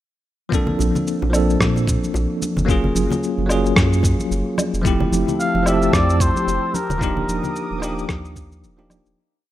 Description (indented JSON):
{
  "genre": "sunset chillout",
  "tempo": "111 BPM",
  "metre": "4/4",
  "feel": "swing 57% on 16ths",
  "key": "Bb major",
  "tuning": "A4 = 439 Hz",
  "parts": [
    { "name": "bell-like tine electric piano", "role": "accompaniment", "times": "0.5-9.2 s", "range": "F3 to A4", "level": "-21 LUFS", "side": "equal", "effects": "medium stereo tremolo, auto-pan, ping-pong delay" },
    { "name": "electronic kick drum", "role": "drums", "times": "0.5-8.5 s", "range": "none", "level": "-22 LUFS", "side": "equal", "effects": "none" },
    { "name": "electronic shaker, woodblock and rim click", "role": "drums", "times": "0.5-9.2 s", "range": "none", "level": "-25 LUFS", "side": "equal", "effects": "none" },
    { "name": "congas and bongos", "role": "percussion", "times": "0.7-9.0 s", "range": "none", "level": "-26 LUFS", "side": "left 2 dB", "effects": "none" },
    { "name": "warm sub bass", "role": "bass", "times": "0.8-9.1 s", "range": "Eb1 to Bb2", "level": "-22 LUFS", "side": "equal", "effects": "none" },
    { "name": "lush unison pad", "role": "sustained chords", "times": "5.3-9.2 s", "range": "G4 to E6", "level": "-30 LUFS", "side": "right 1 dB", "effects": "chorus" },
    { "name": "trumpet with cup mute", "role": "melody", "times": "5.4-8.4 s", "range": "Bb4 to F5", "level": "-23 LUFS", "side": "equal", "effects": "ping-pong delay" }
  ],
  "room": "light reverb",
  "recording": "rough home demo mix",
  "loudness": "-17 LUFS",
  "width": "side -13 dB against mid",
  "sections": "0.5-9.2 groove",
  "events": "fade-out 6.3-9.2",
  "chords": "0.5 Bbmaj9; 2.7 Gbmaj9; 4.8 Fmaj9; 6.7 Ebmaj9",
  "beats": "| 0.52 1.06 1.60 2.14 | 2.69 3.23 3.77 4.31 | 4.85 5.39 5.93 6.47 | 7.01 7.55 8.09 8.63"
}